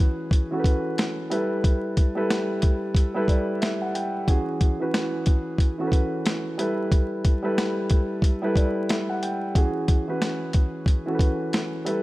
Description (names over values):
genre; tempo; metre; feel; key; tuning
hip hop, boom-bap hip-hop; 91 BPM; 4/4; swing 58% on 16ths; unclear; A4 = 439 Hz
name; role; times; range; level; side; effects
dark grand piano; accompaniment; 0.0-12.0 s; E3 to G5; -25 LUFS; equal; cassette tape, high-pass filter, low-pass filter
boom bap sampler-style drum kit; drums; 0.3-12.0 s; hi-hat, kick drum, snare drum; -21 LUFS; equal; none
room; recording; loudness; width
digital ambience; vinyl crackle; -21 LUFS; side -19 dB against mid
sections
0.0-12.0 A section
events
none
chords
0.0 E69; 1.3 G69; 4.3 E69; 6.6 G69; 9.6 E69